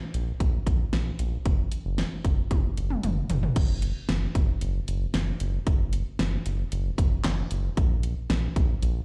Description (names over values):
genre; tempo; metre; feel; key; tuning
synth-pop; 114 BPM; 4/4; straight; F# major; A4 = 441 Hz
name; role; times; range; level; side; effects
round analog bass; bass; 0.1-9.0 s; F#1 to A#1; -30 LUFS; equal; none
pop drum kit; drums; 0.1-8.9 s; crash cymbal, handclaps, hi-hat, kick drum, snare drum, toms; -29 LUFS; equal; none
room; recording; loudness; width
light reverb; played on a big sound system in a bare room, large studio reverb; -27 LUFS; mono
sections
0.0-3.6 A section; 3.6-9.0 B section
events
drum fill 2.5-3.6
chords
none